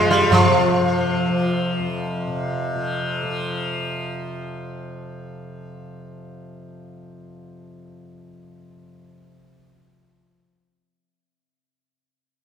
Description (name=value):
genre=indian classical, Hindustani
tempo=152 BPM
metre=4/4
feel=straight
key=unclear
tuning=A4 = 441 Hz
part: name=sitar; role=melody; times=0.0-1.9 s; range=F3 to F4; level=-18 LUFS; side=left 1 dB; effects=none
part: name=tanpura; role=drone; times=0.0-10.2 s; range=F2 to F3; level=-28 LUFS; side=equal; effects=none
part: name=tabla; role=percussion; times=0.1-0.5 s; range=none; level=-21 LUFS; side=right 3 dB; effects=none
room=wet scoring stage reverb, RT60 1.7 s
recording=recorded in a church or concert hall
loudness=-19 LUFS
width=side -8 dB against mid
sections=0.3-3.5 A section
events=none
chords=none